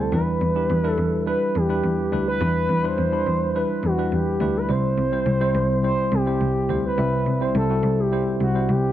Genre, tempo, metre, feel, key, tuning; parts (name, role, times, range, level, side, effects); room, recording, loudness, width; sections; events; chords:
pop; 105 BPM; 4/4; straight; A4 = 441 Hz
expressive synth lead; melody; 0.0-8.9 s; F#4 to C5; -24 LUFS; equal; chorus
tine electric piano; accompaniment; 0.0-8.9 s; C3 to B5; -25 LUFS; equal; medium stereo tremolo
rich cello; bass; 0.0-8.9 s; C2 to E2; -24 LUFS; equal
light reverb, small room ambience; -19 LUFS; side -12 dB against mid
0.0-8.9 A section
0.1 Em7; 4.7 C